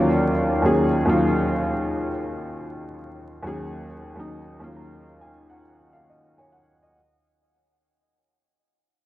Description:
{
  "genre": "hip hop",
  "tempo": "68 BPM",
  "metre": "4/4",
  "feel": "swing 63% on 16ths",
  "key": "Eb minor",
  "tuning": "A4 = 436 Hz",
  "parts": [
    { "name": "dark upright piano", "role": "solo", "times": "0.0-7.2 s", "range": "Eb2 to Bb5", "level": "-21 LUFS", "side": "equal", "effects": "cassette tape, analog delay" }
  ],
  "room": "moderate studio reverb, RT60 0.6 s",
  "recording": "vinyl crackle",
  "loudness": "-20 LUFS",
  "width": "side -15 dB against mid",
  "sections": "0.0-7.0 A section",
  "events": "fade-out 0.0-7.0",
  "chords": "0.0 Ebm9"
}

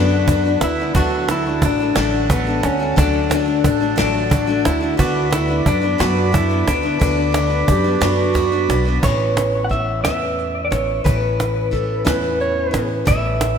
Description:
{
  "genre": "acoustic folk duo or small band",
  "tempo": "59 BPM (dotted quarters)",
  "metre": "6/8",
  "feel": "straight",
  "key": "unclear",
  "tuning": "A4 = 440 Hz",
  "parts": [
    { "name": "electric guitar through a small old amp", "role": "melody", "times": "0.0-13.6 s", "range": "B3 to F#5", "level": "-20 LUFS", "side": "left 2 dB", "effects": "harmonic tremolo, ping-pong delay" },
    { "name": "picked steel-string acoustic guitar", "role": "accompaniment", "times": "0.0-13.6 s", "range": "A2 to F#4", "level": "-24 LUFS", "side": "left 2 dB", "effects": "none" },
    { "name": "hand-pumped harmonium", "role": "sustained chords", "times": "0.0-9.0 s", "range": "A4 to B5", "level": "-26 LUFS", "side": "right 2 dB", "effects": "none" },
    { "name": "upright bass", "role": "bass", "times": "0.0-13.6 s", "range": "A1 to F#2", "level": "-22 LUFS", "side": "equal", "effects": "none" },
    { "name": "vintage brush drum kit", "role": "drums", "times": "0.3-13.6 s", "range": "crash cymbal, hi-hat, kick drum, ride cymbal, snare drum", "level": "-28 LUFS", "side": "equal", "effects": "none" },
    { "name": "cajon", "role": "percussion", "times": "0.3-13.6 s", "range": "none", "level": "-22 LUFS", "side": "right 2 dB", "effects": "none" },
    { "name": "mellow clarinet", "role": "second line", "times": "7.7-12.9 s", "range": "F#4 to C#5", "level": "-23 LUFS", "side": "right 6 dB", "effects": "none" }
  ],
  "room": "moderate lush hall reverb, RT60 2.3 s",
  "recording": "dreamy mix soaked in reverb",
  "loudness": "-15 LUFS",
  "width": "side -7 dB against mid",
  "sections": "0.0-9.0 A section; 9.0-13.6 B section",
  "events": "none",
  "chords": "0.0 Bm; 1.0 D; 5.0 Bm/D; 9.0 Aadd9"
}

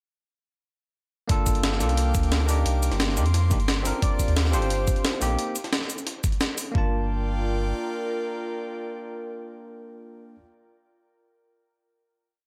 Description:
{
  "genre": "liquid drum and bass",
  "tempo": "176 BPM",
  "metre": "4/4",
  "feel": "straight",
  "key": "G minor",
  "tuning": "A4 = 438 Hz",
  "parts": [
    { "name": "bell-like tine electric piano", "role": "accompaniment", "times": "1.3-10.4 s", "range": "Bb3 to A5", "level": "-34 LUFS", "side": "equal", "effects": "delay" },
    { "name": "airy breathy pad", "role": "sustained chords", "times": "1.3-10.2 s", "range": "Bb3 to D6", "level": "-38 LUFS", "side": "equal", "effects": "chorus, sidechain pumping" },
    { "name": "warm sub bass", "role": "bass", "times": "1.3-7.7 s", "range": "G1 to F2", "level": "-26 LUFS", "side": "equal", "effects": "none" },
    { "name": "breakbeat sampler-style drum kit", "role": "drums", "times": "1.3-6.6 s", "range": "hi-hat, shaker, snare drum", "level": "-30 LUFS", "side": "equal", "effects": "none" },
    { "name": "electronic kick drum", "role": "drums", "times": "1.3-6.8 s", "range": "none", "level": "-27 LUFS", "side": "equal", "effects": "none" },
    { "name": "warm velvety synth lead", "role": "melody", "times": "4.0-10.2 s", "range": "Bb4 to D5", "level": "-36 LUFS", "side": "equal", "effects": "chorus, dub echo" }
  ],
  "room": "digital ambience",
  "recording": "none",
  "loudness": "-25 LUFS",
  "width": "mono",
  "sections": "1.3-6.7 drop; 6.7-9.5 final chord",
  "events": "drop 1.3-6.7",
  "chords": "1.3 Gm7; 2.7 Ebmaj13; 5.4 Bbsus24; 6.7 Gm7"
}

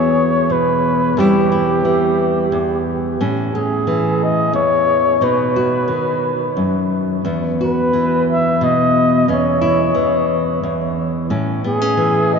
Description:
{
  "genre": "acoustic folk-pop ballad",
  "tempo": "89 BPM",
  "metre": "3/4",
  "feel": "straight",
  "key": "unclear",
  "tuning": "A4 = 442 Hz",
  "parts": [
    { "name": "breathy flugelhorn", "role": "melody", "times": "0.0-12.4 s", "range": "G4 to E5", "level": "-17 LUFS", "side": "left 1 dB", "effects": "none" },
    { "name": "nylon-string guitar", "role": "accompaniment", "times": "0.0-12.4 s", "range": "E2 to F#4", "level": "-17 LUFS", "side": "equal", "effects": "none" }
  ],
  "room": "wet cathedral reverb, RT60 6.4 s",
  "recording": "in a vast, echoing space, nothing above 7.6 kHz",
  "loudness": "-14 LUFS",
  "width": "side -5 dB against mid",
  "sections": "0.0-12.4 A section",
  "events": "none",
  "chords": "0.0 Esus2; 1.2 C/E; 3.2 Amaj7; 5.2 B; 7.3 Esus2; 9.3 C#m/E; 11.3 Amaj7"
}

